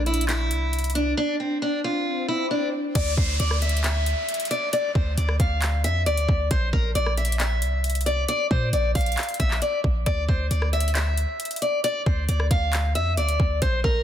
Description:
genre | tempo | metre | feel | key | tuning
hip hop, trap | 135 BPM | 4/4 | half-time | D minor | A4 = 438 Hz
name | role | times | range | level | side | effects
warm 808-style bass | bass | 0.0-14.0 s | Bb1 to Bb2 | -24 LUFS | equal | none
picked steel-string acoustic guitar | melody | 0.1-14.0 s | C4 to F5 | -25 LUFS | left 1 dB | low-pass filter
trap drum kit | drums | 0.1-13.9 s | crash cymbal, handclaps, hi-hat, kick drum, rim click | -26 LUFS | equal | none
swell and downlifter | sound effects | 1.6-6.5 s | none | -33 LUFS | left 2 dB | none
room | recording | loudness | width
digital ambience | dense, heavily limited modern master | -21 LUFS | side -10 dB against mid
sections
0.0-3.0 A section; 3.0-14.0 B section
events
swell 1.6-3.0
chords
0.0 Bb5; 3.0 Dsus2; 6.5 Bb5; 10.1 Dsus2

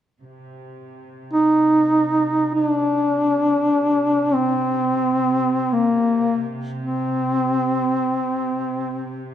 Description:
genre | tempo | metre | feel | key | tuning
caucasian folk, Caucasian lament | free time | none | none | C minor | A4 = 438 Hz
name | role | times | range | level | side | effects
dark studio string section | drone | 0.2-9.3 s | C3 | -32 LUFS | right 2 dB | none
mellow duduk | melody | 1.3-9.3 s | Bb3 to Eb4 | -18 LUFS | equal | none
room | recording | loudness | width
wet large studio reverb, RT60 1.4 s | band playing live in one room | -18 LUFS | side -10 dB against mid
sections
0.2-9.3 A section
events
none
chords
none

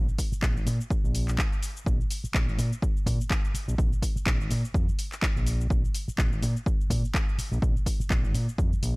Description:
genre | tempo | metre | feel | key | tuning
filtered disco house | 125 BPM | 4/4 | swing 57% on 16ths | unclear | A4 = 440 Hz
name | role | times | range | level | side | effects
overdriven fingered electric bass | bass | 0.0-9.0 s | Ab1 to Bb2 | -28 LUFS | equal | sidechain pumping
house drum kit | drums | 0.1-8.9 s | handclaps, hi-hat, shaker | -34 LUFS | left 1 dB | sidechain pumping on perc, sidechain pumping on hats
electronic kick drum | drums | 0.2-8.7 s | none | -26 LUFS | equal | none
room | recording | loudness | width
little or no reverb | dry, gritty hardware recording | -24 LUFS | side -27 dB against mid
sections
0.0-9.0 A section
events
none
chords
none

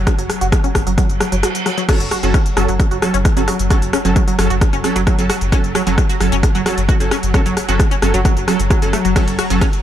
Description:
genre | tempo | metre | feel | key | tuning
driving peak-time techno | 132 BPM | 4/4 | straight | F# minor | A4 = 442 Hz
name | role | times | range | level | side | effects
saturated sub bass | bass | 0.0-9.6 s | F#1 | -21 LUFS | equal | tube saturation, sidechain pumping, low-pass filter
swarming drone | drone | 0.0-9.8 s | F#3 | -26 LUFS | left 2 dB | built-in reverb, sidechain pumping
tight sequenced synth | riff | 0.1-9.7 s | F#3 to F#4 | -22 LUFS | equal | chorus, sidechain pumping, digital delay
electronic kick drum | drums | 0.1-9.7 s | none | -16 LUFS | equal | none
techno drum kit | drums | 0.1-9.8 s | crash cymbal, hi-hat, ride cymbal, rim click | -21 LUFS | left 1 dB | sidechain pumping on hats, sidechain pumping on cymbals
reverse cymbal | sound effects | 1.1-1.9 s | none | -29 LUFS | right 5 dB | none
rave stab | stabs | 1.9-9.6 s | F#3 to A4 | -21 LUFS | right 3 dB | chorus, built-in reverb, cassette tape, sidechain pumping, dub echo
room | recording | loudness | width
little or no reverb | none | -13 LUFS | side -11 dB against mid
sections
0.0-1.9 A section; 1.9-9.8 B section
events
filter sweep on synth arpeggio sound 0.0-1.9; reverse cymbal 1.1-1.9; drop 1.9-9.8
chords
0.0 N.C.; 1.9 F#m

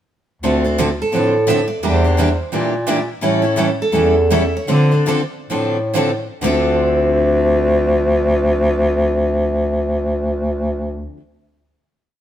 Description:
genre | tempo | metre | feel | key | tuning
acoustic string swing (jazz manouche) | 120-172 BPM | 4/4 | swing 60% on 8ths | D minor | A4 = 440 Hz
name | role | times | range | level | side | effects
picked steel-string acoustic guitar | accompaniment | 0.4-11.2 s | D3 to A4 | -22 LUFS | left 3 dB | none
picked steel-string acoustic guitar | accompaniment | 0.4-11.2 s | D3 to Bb4 | -23 LUFS | right 4 dB | none
clear bass clarinet | bass | 0.4-11.1 s | D2 to D3 | -16 LUFS | equal | none
picked steel-string acoustic guitar | melody | 1.0-6.0 s | A4 to E5 | -19 LUFS | right 2 dB | none
room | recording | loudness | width
light reverb | band playing live in one room | -14 LUFS | side -10 dB against mid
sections
0.4-6.4 A section; 6.4-10.4 final chord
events
slowing down 3.2-6.4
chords
0.4 Dm7; 1.8 Em7b5; 3.2 A7; 4.7 Dm7

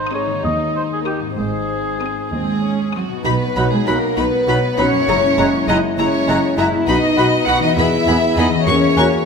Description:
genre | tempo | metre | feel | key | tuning
cinematic, playful, whimsical film cue | 66 BPM (dotted quarters) | 6/8 | straight | Ab major, B major from 3.3 s | A4 = 440 Hz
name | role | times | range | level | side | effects
mellow oboe | second line | 0.0-9.1 s | G4 to G#5 | -27 LUFS | equal | none
warm chamber violin section | second line | 0.0-9.3 s | Eb4 to F#5 | -21 LUFS | left 2 dB | none
concert harp | arpeggios | 0.0-9.3 s | F#2 to B4 | -24 LUFS | left 7 dB | none
clear chamber double bass section | bass | 0.0-9.0 s | F#1 to E2 | -24 LUFS | right 3 dB | none
dark studio cello section | bass | 0.0-9.3 s | Eb2 to F#4 | -21 LUFS | right 2 dB | none
warm chamber violin section | melody | 0.1-9.1 s | A#5 to Eb6 | -24 LUFS | left 2 dB | none
warm chamber viola section | accompaniment | 0.1-9.1 s | Bb3 to Ab4 | -25 LUFS | right 1 dB | none
mellow French horn section | sustained chords | 3.3-9.3 s | F#3 to G#4 | -24 LUFS | left 3 dB | none
concert flute | second line | 3.6-9.0 s | A#5 to B5 | -30 LUFS | equal | none
warm clarinet | second line | 3.6-9.1 s | D#4 to F#4 | -30 LUFS | equal | none
warm bassoon | accompaniment | 3.6-9.1 s | F#3 to C#4 | -27 LUFS | right 1 dB | none
room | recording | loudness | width
wet scoring stage reverb, RT60 1.9 s | minimal, uncompressed stereo recording | -14 LUFS | side -5 dB against mid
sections
0.0-3.3 A section; 3.3-9.3 B section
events
none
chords
0.4 Eb; 1.4 Ab; 3.3 B; 5.1 F#9; 6.9 B; 7.8 E; 8.7 F#7/E

